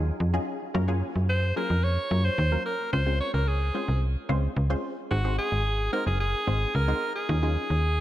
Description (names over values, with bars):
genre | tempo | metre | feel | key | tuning
dance-pop | 110 BPM | 4/4 | straight | Db major | A4 = 440 Hz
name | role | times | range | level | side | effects
punchy chord stab | accompaniment | 0.0-7.8 s | Gb3 to C5 | -33 LUFS | left 1 dB | chorus
slap-like FM bass | bass | 0.0-8.0 s | Gb1 to Gb2 | -25 LUFS | equal | none
edgy alto saxophone | melody | 1.3-8.0 s | Gb4 to Db5 | -29 LUFS | equal | tape echo
room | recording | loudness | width
light reverb, studio reverb | none | -24 LUFS | side -14 dB against mid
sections
0.0-8.0 A section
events
none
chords
0.0 Ebm11; 0.7 Gbmaj7; 2.9 Dbmaj7; 5.1 Ab7; 7.3 Ebm11